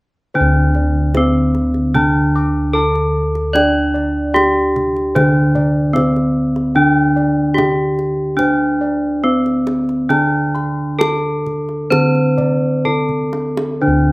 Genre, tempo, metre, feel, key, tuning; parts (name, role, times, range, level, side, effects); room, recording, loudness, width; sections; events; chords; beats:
Javanese gamelan; 62-75 BPM; 4/4; straight; A4 = 440 Hz
gamelan-type bronze metallophone; accompaniment; 0.3-14.1 s; D3 to D4; -21 LUFS; right 1 dB
gamelan-type bossed gongs; arpeggios; 0.3-14.1 s; C5-40c to D6; -24 LUFS; left 2 dB; slapback echo
gamelan-type bronze metallophone; melody; 0.4-14.1 s; C4-40c to D5; -16 LUFS; equal
gamelan-type bossed gongs; bass; 0.4-14.1 s; D2 to D5; -19 LUFS; equal
kendang; percussion; 0.7-13.8 s; -25 LUFS; right 2 dB
little or no reverb; recorded outdoors, with no room sound; -13 LUFS; side -23 dB against mid
0.4-13.8 A section
drum fill 12.9-13.8
| 0.36 1.16 1.96 2.76 | 3.56 4.36 5.16 5.96 | 6.76 7.57 8.39 9.24 | 10.11 11.00 11.91 12.85 | 13.81